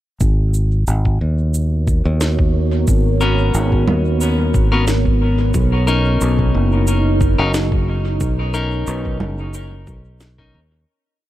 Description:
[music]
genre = ambient dub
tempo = 90 BPM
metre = 4/4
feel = swing 54% on 16ths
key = G# minor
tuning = A4 = 440 Hz
[part]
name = deep dark ambient pad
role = sustained chords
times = 1.5-10.9 s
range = B3 to C#5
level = -23 LUFS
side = right 1 dB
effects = chorus, built-in reverb
[part]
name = fingered electric bass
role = bass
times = 0.2-10.8 s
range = F#1 to D#2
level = -17 LUFS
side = equal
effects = tube saturation
[part]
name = electronic cabasa, snare drum and congas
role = drums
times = 0.2-10.4 s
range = none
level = -24 LUFS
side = right 1 dB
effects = overdrive, dub echo
[part]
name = electronic kick drum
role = drums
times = 0.2-10.5 s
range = none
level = -18 LUFS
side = equal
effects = none
[part]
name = clean electric guitar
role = stabs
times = 3.2-10.6 s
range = B3 to A#4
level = -23 LUFS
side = left 3 dB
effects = dub echo
[sound]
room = little or no reverb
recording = dark, warm production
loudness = -14 LUFS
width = side -14 dB against mid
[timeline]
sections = 0.2-10.9 groove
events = fade-out 7.3-10.9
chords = 0.2 G#m11; 5.5 Bmaj9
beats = | 0.21 0.88 1.54 2.21 | 2.88 3.54 4.21 4.88 | 5.54 6.21 6.88 7.54 | 8.21 8.88 9.54 10.21

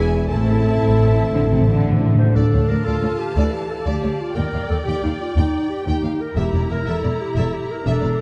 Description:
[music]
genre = cinematic, heroic adventure film score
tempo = 120 BPM (dotted quarters)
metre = 12/8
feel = straight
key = D minor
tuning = A4 = 439 Hz
[part]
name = rich studio violin section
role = melody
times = 0.0-8.2 s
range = C5 to Bb5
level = -37 LUFS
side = equal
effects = none
[part]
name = large flute ensemble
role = second line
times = 0.0-1.8 s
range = G#5 to A5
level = -37 LUFS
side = equal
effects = none
[part]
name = warm symphonic violin section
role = second line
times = 0.0-8.1 s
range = C#5 to A5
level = -36 LUFS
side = equal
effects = none
[part]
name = rich studio viola section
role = accompaniment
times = 0.0-8.2 s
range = E3 to D5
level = -33 LUFS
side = equal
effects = none
[part]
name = dark French horn section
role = sustained chords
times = 0.0-1.8 s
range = G#4 to A4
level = -25 LUFS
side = equal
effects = none
[part]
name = mellow trombone section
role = sustained chords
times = 0.0-2.2 s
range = A2 to D4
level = -32 LUFS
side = equal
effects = none
[part]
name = clear trumpet section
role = stabs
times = 0.0-2.2 s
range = E5 to G#5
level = -32 LUFS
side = equal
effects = none
[part]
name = rich symphonic cello section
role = bass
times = 0.0-8.1 s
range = D2 to D3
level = -25 LUFS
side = equal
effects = none
[part]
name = rich symphonic double bass section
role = bass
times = 0.0-8.1 s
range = E1 to Eb2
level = -25 LUFS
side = equal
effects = none
[part]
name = timpani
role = percussion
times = 0.3-2.8 s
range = A2 to D3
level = -22 LUFS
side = equal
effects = none
[part]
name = mellow clarinet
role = second line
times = 2.2-8.2 s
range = Eb4 to C5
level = -27 LUFS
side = equal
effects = none
[sound]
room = wet scoring stage reverb, RT60 1.9 s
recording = dark, warm production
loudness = -19 LUFS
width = mono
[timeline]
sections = 0.0-2.4 A section; 2.4-8.2 B section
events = timpani fill 0.3-2.4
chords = 0.3 Am; 2.4 Dm; 4.4 Eb; 6.4 Edim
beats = | 0.30 0.82 1.34 1.85 | 2.36 2.86 3.36 3.86 | 4.36 4.86 5.36 5.86 | 6.36 6.86 7.36 7.85

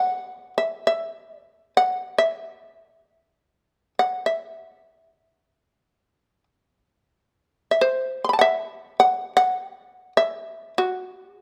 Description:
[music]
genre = japanese traditional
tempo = free time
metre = none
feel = none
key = unclear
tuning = A4 = 440 Hz
[part]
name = shamisen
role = solo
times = 0.0-11.4 s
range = A4 to C6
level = -22 LUFS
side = equal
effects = none
[sound]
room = light reverb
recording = close, detailed microphones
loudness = -23 LUFS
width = mono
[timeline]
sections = 0.0-11.4 A section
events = none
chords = none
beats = free time

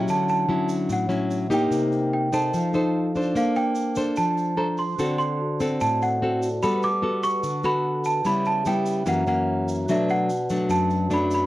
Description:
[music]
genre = bossa nova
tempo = 147 BPM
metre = 4/4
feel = straight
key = D major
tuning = A4 = 440 Hz
[part]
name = nylon-string guitar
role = accompaniment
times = 0.0-11.5 s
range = F#2 to C5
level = -24 LUFS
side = left 1 dB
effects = none
[part]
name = vibraphone with medium mallets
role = accompaniment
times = 0.0-11.5 s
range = D4 to B5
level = -30 LUFS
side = right 1 dB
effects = none
[part]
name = worn celesta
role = melody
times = 0.1-11.5 s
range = E5 to D6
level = -25 LUFS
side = right 2 dB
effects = none
[part]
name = egg shaker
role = percussion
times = 0.1-11.5 s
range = none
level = -44 LUFS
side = right 3 dB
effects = none
[sound]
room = moderate studio ambience, RT60 0.5 s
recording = worn, warbling old tape, cassette tape, warbly pitch drift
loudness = -21 LUFS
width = side -16 dB against mid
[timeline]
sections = 0.0-3.4 A section; 3.4-11.5 B section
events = none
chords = 0.1 Dmaj9; 1.7 Cm7; 2.5 F7; 3.4 Bbmaj9; 5.0 D7; 6.6 Gmaj9; 8.3 C#m7b5; 9.1 F#7; 9.9 Bm7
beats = | 0.08 0.49 0.90 1.31 | 1.72 2.12 2.53 2.94 | 3.35 3.76 4.17 4.58 | 4.99 5.39 5.80 6.21 | 6.62 7.03 7.44 7.85 | 8.25 8.66 9.07 9.48 | 9.89 10.30 10.71 11.11

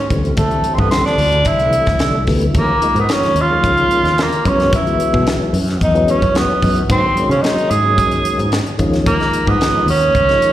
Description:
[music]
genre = electric jazz fusion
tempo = 110 BPM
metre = 4/4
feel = straight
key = Eb phrygian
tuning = A4 = 439 Hz
[part]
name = clear tenor saxophone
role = melody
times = 0.0-10.5 s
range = A3 to Ab4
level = -16 LUFS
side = right 1 dB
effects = slapback echo, analog delay
[part]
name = tonewheel organ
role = accompaniment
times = 0.1-10.5 s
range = D3 to Bb4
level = -20 LUFS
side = left 1 dB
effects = chorus vibrato, slow rotary speaker, slapback echo
[part]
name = fretless electric bass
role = bass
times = 0.1-10.3 s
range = C2 to Db3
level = -18 LUFS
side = equal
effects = none
[part]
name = crisp fusion drum kit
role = drums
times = 0.1-10.5 s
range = hi-hat, kick drum, snare drum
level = -20 LUFS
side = equal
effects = none
[sound]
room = light reverb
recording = live gig heard through the venue's PA, recital hall reverb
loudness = -12 LUFS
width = side -13 dB against mid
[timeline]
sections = 0.0-10.5 A section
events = none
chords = 0.1 D9sus4; 2.5 Eb9sus4; 4.4 Gb9sus4; 6.9 Ab9sus4; 8.8 Eb9sus4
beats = | 0.37 0.92 1.46 2.00 | 2.55 3.09 3.63 4.18 | 4.72 5.26 5.81 6.35 | 6.89 7.43 7.98 8.52 | 9.06 9.60 10.14

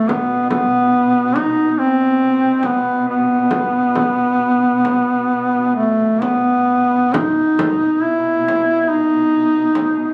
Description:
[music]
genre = caucasian folk, Caucasian lament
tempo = 64-72 BPM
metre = 4/4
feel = rubato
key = B major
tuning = A4 = 440 Hz
[part]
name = warm duduk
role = melody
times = 0.0-10.1 s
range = A3 to E4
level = -17 LUFS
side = equal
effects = none
[part]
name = muted studio string section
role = drone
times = 0.0-10.1 s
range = B2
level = -28 LUFS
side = equal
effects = none
[part]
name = frame drum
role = percussion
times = 0.1-10.0 s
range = none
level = -26 LUFS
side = equal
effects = none
[sound]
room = light reverb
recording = recorded on a phone in the room, club reverb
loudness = -16 LUFS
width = mono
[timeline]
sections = 0.0-7.1 A section; 7.1-10.1 B section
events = none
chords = none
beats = | 0.10 0.94 1.78 2.64 | 3.51 4.40 5.29 6.21 | 7.14 8.04 8.91 9.76

